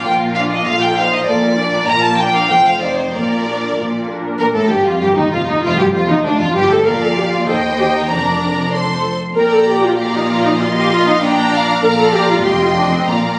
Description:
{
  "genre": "quick classical-period movement for string orchestra",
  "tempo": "97 BPM",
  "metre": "2/4",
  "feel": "straight",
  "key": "Bb major",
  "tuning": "A4 = 439 Hz",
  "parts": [
    { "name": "warm studio violin section", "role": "melody", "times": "0.0-13.4 s", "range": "D4 to C6", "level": "-20 LUFS", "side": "equal", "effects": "none" },
    { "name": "warm symphonic violin section", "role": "second line", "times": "0.0-13.4 s", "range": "D4 to G5", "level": "-23 LUFS", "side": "equal", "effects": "none" },
    { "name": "dark symphonic viola section", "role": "accompaniment", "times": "0.0-13.4 s", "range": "Bb3 to D5", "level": "-19 LUFS", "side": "equal", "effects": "none" },
    { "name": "rich symphonic double bass section", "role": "bass", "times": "0.1-13.4 s", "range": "F1 to Eb2", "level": "-27 LUFS", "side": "equal", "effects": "none" },
    { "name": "warm symphonic cello section", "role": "bass", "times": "0.1-13.4 s", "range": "D2 to Bb2", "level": "-23 LUFS", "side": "equal", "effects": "none" }
  ],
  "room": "wet recital hall reverb, RT60 1.6 s",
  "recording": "recorded on a phone in the room, studio reverb, compression",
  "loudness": "-15 LUFS",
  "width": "mono",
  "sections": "0.0-4.4 A section; 4.4-13.4 B section",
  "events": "none",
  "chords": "0.0 Bb; 0.7 F7/Bb; 1.3 Bb; 2.5 F7; 3.1 Bb; 4.4 N.C.; 5.6 Ebadd9/F; 6.2 Dmadd11; 6.9 Bb; 7.5 Cm/Eb; 8.1 Bb/F; 8.7 F; 9.4 Bb; 10.6 F5/Bb; 11.2 Bb; 12.4 F5",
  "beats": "0.05 | 0.66 1.27 | 1.89 2.51 | 3.14 3.77 | 4.40 5.02 | 5.63 6.24 | 6.85 7.47 | 8.10 8.73 | 9.36 9.98 | 10.60 11.22 | 11.83 12.45 | 13.08"
}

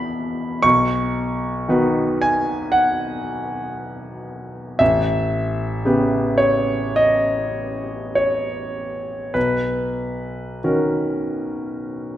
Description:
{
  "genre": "classical, impressionist solo piano",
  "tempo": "46-60 BPM",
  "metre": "4/4",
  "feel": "rubato",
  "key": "B major",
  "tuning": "A4 = 439 Hz",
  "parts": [
    { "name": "warm concert grand piano", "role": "solo", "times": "0.0-12.2 s", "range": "A1 to C#6", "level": "-19 LUFS", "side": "equal", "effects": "none" }
  ],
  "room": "moderate scoring stage reverb, RT60 1.5 s",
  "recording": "none",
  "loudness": "-18 LUFS",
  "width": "side -12 dB against mid",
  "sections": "0.0-12.2 A section",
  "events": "none",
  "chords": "0.0 Eadd9; 0.6 Badd9; 4.8 A9; 9.4 Bmaj9",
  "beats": "| 0.64 1.70 2.73 3.79 | 4.81 5.85 6.97 8.15 | 9.36 10.64 11.90"
}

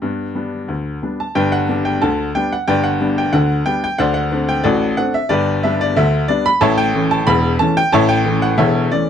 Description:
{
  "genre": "ragtime piano",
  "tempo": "91 BPM",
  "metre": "2/4",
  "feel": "straight",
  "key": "G major",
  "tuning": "A4 = 440 Hz",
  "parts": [
    { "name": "clear upright piano", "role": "solo", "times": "0.0-9.1 s", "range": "E1 to B5", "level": "-14 LUFS", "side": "left 1 dB", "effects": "none" }
  ],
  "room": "light reverb",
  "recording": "close, detailed microphones",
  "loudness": "-14 LUFS",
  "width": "side -8 dB against mid",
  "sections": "0.0-1.4 A section; 1.4-9.1 B section",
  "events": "none",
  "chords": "0.0 G; 4.0 D7; 5.3 G; 6.6 A",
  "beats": "| 0.03 0.69 | 1.36 2.02 | 2.68 3.33 | 3.99 4.65 | 5.31 5.96 | 6.62 7.27 | 7.93 8.59"
}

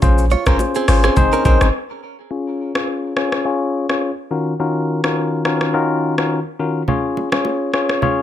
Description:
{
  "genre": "afrobeats",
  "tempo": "105 BPM",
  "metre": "4/4",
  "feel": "swing 55% on 16ths",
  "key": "Db major",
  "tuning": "A4 = 440 Hz",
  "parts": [
    { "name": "bell-like tine electric piano", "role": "accompaniment", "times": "0.0-8.2 s", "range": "Eb3 to Db5", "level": "-18 LUFS", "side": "left 3 dB", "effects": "low-pass filter" },
    { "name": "punchy sub bass", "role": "bass", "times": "0.0-1.7 s", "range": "Ab1 to Bb1", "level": "-16 LUFS", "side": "equal", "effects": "none" },
    { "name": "afro-pop drum kit", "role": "drums", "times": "0.0-8.0 s", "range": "hi-hat, kick drum, rim click, shaker", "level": "-20 LUFS", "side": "equal", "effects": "vintage 12-bit sampler grit" },
    { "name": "congas and bongos", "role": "percussion", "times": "0.0-1.7, 6.9-8.2 s", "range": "none", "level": "-24 LUFS", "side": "right 4 dB", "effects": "none" },
    { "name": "direct-recorded clean electric guitar", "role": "riff", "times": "0.3-1.6 s", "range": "C4 to Db5", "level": "-23 LUFS", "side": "right 7 dB", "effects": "tape echo" }
  ],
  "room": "light reverb, digital ambience",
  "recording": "none",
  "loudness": "-16 LUFS",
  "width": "side -11 dB against mid",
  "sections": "0.0-2.3 A section; 2.3-8.2 B section",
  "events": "break 1.7-2.3; filter sweep on tine electric piano 2.3-8.2",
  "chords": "0.0 Bbm7; 1.2 Ab; 2.3 Db; 4.3 Ebm7; 6.9 Db",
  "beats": "| 0.02 0.59 1.17 1.74 | 2.31 2.88 3.45 4.02 | 4.59 5.17 5.74 6.31 | 6.88 7.45 8.02"
}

